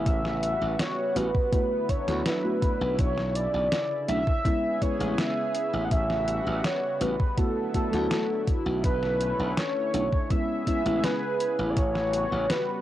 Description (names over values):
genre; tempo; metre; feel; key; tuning
vaporwave; 82 BPM; 4/4; straight; A major; A4 = 440 Hz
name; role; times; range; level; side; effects
warm velvety synth lead; melody; 0.0-12.8 s; A4 to F#5; -28 LUFS; equal; chorus, cassette tape, tape echo, plate reverb
mellow FM electric piano; accompaniment; 0.0-11.8 s; G3 to F#4; -30 LUFS; equal; analog chorus, vintage 12-bit sampler grit, tape echo, plate reverb
lush unison pad; sustained chords; 0.0-12.8 s; C#3 to G#4; -35 LUFS; equal; chorus, plate reverb
glassy slap bass; bass; 0.0-12.5 s; A1 to D2; -30 LUFS; equal; none
detuned 8-bit digital drum machine; drums; 0.1-12.6 s; hi-hat, snare drum; -31 LUFS; equal; cassette tape
electronic kick drum; drums; 0.1-11.9 s; none; -26 LUFS; equal; cassette tape
room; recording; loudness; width
moderate booth ambience, RT60 0.2 s; home recording on cassette; -24 LUFS; side -13 dB against mid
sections
0.0-12.8 A section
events
none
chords
0.1 A13; 1.5 D69; 3.0 Bmadd9; 4.5 Amaj9; 5.9 A13; 7.4 D69; 8.8 Bm11; 10.3 Amaj9; 11.8 A13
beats
| 0.06 0.79 1.52 2.26 | 2.99 3.72 4.45 5.18 | 5.91 6.65 7.38 8.11 | 8.84 9.57 10.30 11.04 | 11.77 12.50